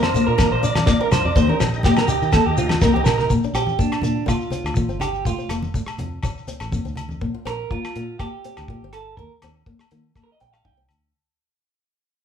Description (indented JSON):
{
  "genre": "highlife guitar band",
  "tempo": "123 BPM",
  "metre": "4/4",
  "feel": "straight",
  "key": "Bb major",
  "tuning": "A4 = 441 Hz",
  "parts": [
    { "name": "nylon-string guitar", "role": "accompaniment", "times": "0.0-11.0 s", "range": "F3 to F4", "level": "-24 LUFS", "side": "left 5 dB", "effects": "none" },
    { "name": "tonewheel organ", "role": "sustained chords", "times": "0.0-3.3 s", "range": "D4 to Bb4", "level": "-30 LUFS", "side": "left 2 dB", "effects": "slow rotary speaker, chorus vibrato" },
    { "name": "electric guitar through a small old amp", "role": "arpeggios", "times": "0.0-10.8 s", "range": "D4 to G5", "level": "-23 LUFS", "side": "right 5 dB", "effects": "none" },
    { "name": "fingered electric bass", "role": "bass", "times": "0.0-11.1 s", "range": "F1 to Eb3", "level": "-26 LUFS", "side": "equal", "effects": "none" },
    { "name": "cloth-damped thuddy drum kit", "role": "drums", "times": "0.0-11.0 s", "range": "hi-hat, kick drum, rim click, snare drum", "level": "-22 LUFS", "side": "equal", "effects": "none" },
    { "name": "agogo bells", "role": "percussion", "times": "0.0-11.0 s", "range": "none", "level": "-31 LUFS", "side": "left 5 dB", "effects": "none" },
    { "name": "congas", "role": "percussion", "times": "0.1-7.2 s", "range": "none", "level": "-28 LUFS", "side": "left 1 dB", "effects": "none" },
    { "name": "shekere", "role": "percussion", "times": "0.2-7.2 s", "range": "none", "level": "-28 LUFS", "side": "left 2 dB", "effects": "none" }
  ],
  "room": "moderate large studio reverb, RT60 0.9 s",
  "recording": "band playing live in one room",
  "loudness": "-18 LUFS",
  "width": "side -8 dB against mid",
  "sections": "0.0-3.3 A section; 3.3-11.1 B section",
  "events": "drum fill 2.9-3.3; fade-out 3.3-11.1; clean electric guitar solo 3.3-11.1",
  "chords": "0.0 Bb; 1.4 Eb; 3.3 Bb; 5.3 F; 7.2 Bb5; 9.2 Eb5"
}